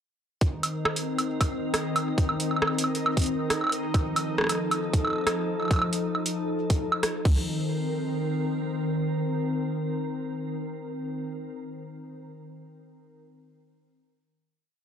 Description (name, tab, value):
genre	IDM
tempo	136 BPM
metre	4/4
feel	straight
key	C dorian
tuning	A4 = 440 Hz
part	glassy FM pad	sustained chords	0.4-11.3 s	Eb3 to Bb4	-29 LUFS	left 2 dB	ensemble chorus, built-in reverb
part	booming analog drum machine	drums	0.4-7.3 s	crash cymbal, hi-hat, rim click, woodblock	-27 LUFS	right 1 dB	none
part	electronic kick drum	drums	0.4-7.3 s	none	-24 LUFS	equal	none
part	bubbling stepped-filter texture	texture	0.4-7.5 s	Eb4 to Eb5	-36 LUFS	right 4 dB	chorus, built-in reverb
room	light reverb, digital ambience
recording	dry, gritty hardware recording, cassette tape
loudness	-25 LUFS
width	side -8 dB against mid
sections	0.4-7.5 groove; 7.5-11.0 final hit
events	none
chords	0.4 Cm7; 3.9 F7; 7.3 Cm7